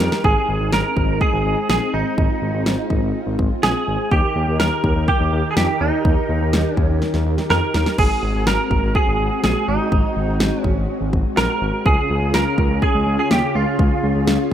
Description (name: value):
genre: synth-pop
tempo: 124 BPM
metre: 4/4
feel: straight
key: unclear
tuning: A4 = 444 Hz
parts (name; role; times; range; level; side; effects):
- direct-recorded clean electric guitar; melody; 0.0-14.5 s; Eb4 to Bb4; -21 LUFS; right 3 dB; ensemble chorus, slapback echo, shimmer reverb
- string machine, violas; sustained chords; 0.0-14.5 s; Db3 to Bb4; -24 LUFS; left 1 dB; ensemble chorus, shimmer reverb
- smooth gliding synth bass; bass; 0.0-14.5 s; Ab1 to F2; -21 LUFS; equal; none
- pop drum kit; drums; 0.0-14.5 s; crash cymbal, hi-hat, kick drum, snare drum; -20 LUFS; equal; none
room: light reverb, digital ambience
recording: rough home demo mix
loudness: -16 LUFS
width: side -10 dB against mid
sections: 0.2-14.5 A section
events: drum fill 0.0, 7.0-8.0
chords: 0.2 Ab; 4.1 Eb; 8.0 Ab7; 11.9 Db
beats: | 0.24 0.73 1.21 1.70 | 2.18 2.66 3.15 3.63 | 4.11 4.60 5.08 5.57 | 6.05 6.53 7.02 7.50 | 7.99 8.47 8.95 9.44 | 9.92 10.40 10.89 11.37 | 11.86 12.34 12.82 13.31 | 13.79 14.28